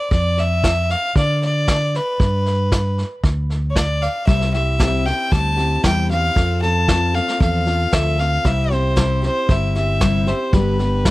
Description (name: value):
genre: honky-tonk and classic country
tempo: 115 BPM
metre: 4/4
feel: straight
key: C major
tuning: A4 = 440 Hz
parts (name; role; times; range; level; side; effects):
- clear fiddle; melody; 0.0-11.1 s; B4 to A5; -21 LUFS; equal; tape echo
- fingered electric bass; bass; 0.1-11.1 s; G1 to D3; -20 LUFS; equal; none
- vintage brush drum kit; drums; 0.1-11.1 s; hi-hat, kick drum, snare drum; -19 LUFS; equal; none
- picked steel-string acoustic guitar; accompaniment; 4.3-11.1 s; G2 to A4; -22 LUFS; left 3 dB; none
room: little or no reverb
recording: dry, close 1970s-style studio recording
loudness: -16 LUFS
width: side -18 dB against mid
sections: 0.0-11.1 A section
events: none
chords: 0.1 Dm/F; 2.2 G; 4.3 C; 6.4 F; 8.4 C; 10.5 G